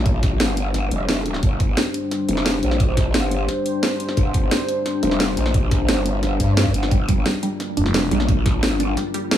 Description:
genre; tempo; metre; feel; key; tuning
dark technical drum and bass; 175 BPM; 4/4; straight; G minor; A4 = 440 Hz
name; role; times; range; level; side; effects
dark analog pad; sustained chords; 0.0-9.4 s; G3 to C5; -24 LUFS; left 1 dB; chorus, phaser, sidechain pumping
growl bass; bass; 0.0-9.0 s; F1 to G2; -21 LUFS; equal; chorus, overdrive
drum and bass drum kit; drums; 0.1-9.4 s; hi-hat, snare drum; -23 LUFS; equal; none
electronic kick drum; drums; 0.1-8.5 s; none; -20 LUFS; equal; overdrive
wide unison pluck; arpeggios; 6.9-9.4 s; G3 to D4; -25 LUFS; right 5 dB; sidechain pumping, dub echo
growling FM bass; bass; 7.8-8.1 s; F1; -21 LUFS; equal; tube saturation
room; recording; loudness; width
light reverb, digital ambience; small room ambience; -18 LUFS; side -11 dB against mid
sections
0.0-9.4 A section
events
none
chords
0.0 Gm

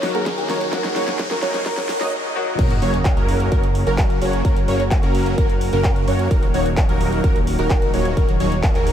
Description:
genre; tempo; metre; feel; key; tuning
EDM, festival progressive house; 129 BPM; 4/4; straight; F# major; A4 = 440 Hz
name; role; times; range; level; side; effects
soft struck synth lead; melody; 0.0-2.1 s; G#4 to C#5; -28 LUFS; equal; chorus, ping-pong delay
bright grand piano; accompaniment; 0.0-2.6 s; D#3 to F#4; -30 LUFS; left 3 dB; none
lush unison pad; sustained chords; 0.0-8.9 s; C#3 to A#4; -28 LUFS; left 1 dB; chorus, sidechain pumping
big-room dance drum kit; drums; 0.0-8.9 s; crash cymbal, handclaps, hi-hat, snare drum; -28 LUFS; equal; none
riser and sub drop; sound effects; 0.0-4.4 s; none; -30 LUFS; equal; none
plucky unison lead; arpeggios; 0.1-8.9 s; A#4 to D#5; -26 LUFS; equal; ensemble chorus, sidechain pumping, ping-pong delay
supersaw chords; riff; 0.1-8.9 s; F#3 to D#5; -25 LUFS; equal; sidechain pumping, ping-pong delay
electronic kick drum; drums; 0.3-8.7 s; none; -19 LUFS; equal; high-pass filter on kick, high-pass filter on room
fat analog bass; bass; 2.6-8.9 s; D#1 to F#2; -23 LUFS; equal; sidechain pumping
room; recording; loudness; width
moderate huge ambient reverb, RT60 6.8 s; dreamy mix soaked in reverb, high-pass filter; -16 LUFS; side -10 dB against mid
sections
0.0-2.6 A section; 2.6-8.9 B section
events
build-up 0.0-2.6; drum fill 0.0-2.1; riser 0.0-2.1; filter sweep on supersaw synth 0.0-2.6; filter sweep on digital synth lead 0.0-2.6; drop 2.6-8.9; impact 2.6-4.4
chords
0.0 D#m; 2.6 F#; 6.3 D#m

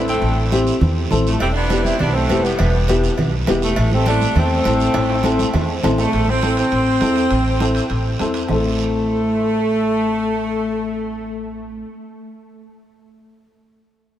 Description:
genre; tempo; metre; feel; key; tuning
latin, cumbia; 203 BPM; 4/4; straight; A minor; A4 = 441 Hz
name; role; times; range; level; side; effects
clear saxophone section; melody; 0.0-11.6 s; E3 to E4; -20 LUFS; equal; none
dark upright piano; accompaniment; 0.0-11.8 s; B3 to A4; -22 LUFS; left 2 dB; none
upright bass; bass; 0.0-11.8 s; E1 to E2; -21 LUFS; equal; none
guiro; percussion; 0.1-8.6 s; none; -31 LUFS; right 6 dB; none
congas; percussion; 0.2-8.6 s; none; -25 LUFS; right 2 dB; none
cowbell and timbales; percussion; 1.4-8.6 s; none; -29 LUFS; right 3 dB; none
room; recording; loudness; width
wet huge ambient reverb, RT60 4.1 s; heard from further back in the room; -15 LUFS; side -11 dB against mid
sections
0.0-6.1 A section; 6.1-8.5 B section; 8.5-10.9 C section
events
drum fill 4.9-6.1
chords
0.0 Am; 1.4 Em; 3.8 Am

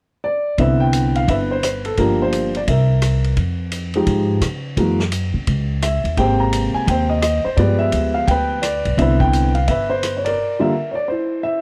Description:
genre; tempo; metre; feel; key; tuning
jazz piano trio; 171 BPM; 4/4; swing 64% on 8ths; C major; A4 = 440 Hz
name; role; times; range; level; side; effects
dark upright piano; melody; 0.2-11.6 s; C3 to Bb5; -21 LUFS; equal; none
upright bass; bass; 0.6-10.3 s; G1 to Db3; -22 LUFS; equal; none
vintage drum kit; drums; 0.6-10.3 s; hi-hat, kick drum, ride cymbal, rim click, snare drum; -29 LUFS; equal; none
room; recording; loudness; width
studio ambience; dry, close 1970s-style studio recording; -18 LUFS; mono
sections
0.6-11.6 A section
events
break 10.4-11.6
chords
0.0 N.C.; 0.6 Cmaj9; 2.0 Gm7; 2.7 C7; 3.4 Fm9; 4.8 F#7(no3); 6.2 Abmaj9; 7.6 G7b9; 9.0 Cmaj9; 10.4 Gm (rootless); 11.1 C

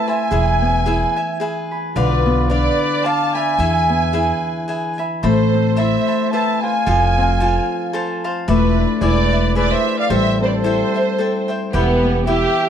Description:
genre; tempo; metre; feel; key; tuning
mexican folk, mariachi; 110 BPM; 3/4; swing 55% on 8ths; A harmonic minor; A4 = 441 Hz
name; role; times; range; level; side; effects
rich symphonic violin section; melody; 0.0-12.7 s; B3 to A5; -20 LUFS; right 1 dB; none
dark trumpet; second line; 0.0-12.7 s; E4 to F5; -24 LUFS; right 7 dB; none
cavaquinho; accompaniment; 0.0-12.7 s; D4 to B5; -25 LUFS; left 2 dB; none
Celtic harp; arpeggios; 0.0-12.7 s; D3 to C6; -21 LUFS; left 4 dB; none
upright bass; bass; 0.3-12.4 s; E1 to E2; -19 LUFS; right 1 dB; none
room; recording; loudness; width
studio reverb; dry, close 1970s-style studio recording; -15 LUFS; side -8 dB against mid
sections
0.0-11.7 A section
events
none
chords
0.3 E; 2.0 Bdim; 3.6 E; 5.2 Amadd9; 6.9 F; 8.5 E7sus4; 9.0 E7; 10.1 Am7; 11.7 Em

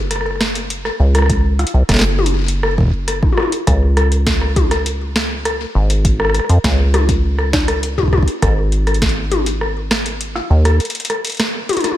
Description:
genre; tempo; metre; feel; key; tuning
IDM; 101 BPM; 4/4; straight; unclear; A4 = 439 Hz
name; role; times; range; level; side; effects
deep acid bass; bass; 0.0-10.8 s; Gb1 to F2; -16 LUFS; equal; none
electro analog drum machine; drums; 0.1-12.0 s; hi-hat, rim click, snare drum, toms; -18 LUFS; left 1 dB; ping-pong delay
electronic kick drum; drums; 1.3-9.1 s; none; -17 LUFS; equal; none
room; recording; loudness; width
little or no reverb; none; -14 LUFS; side -13 dB against mid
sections
0.0-12.0 A section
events
break 10.8-12.0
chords
none

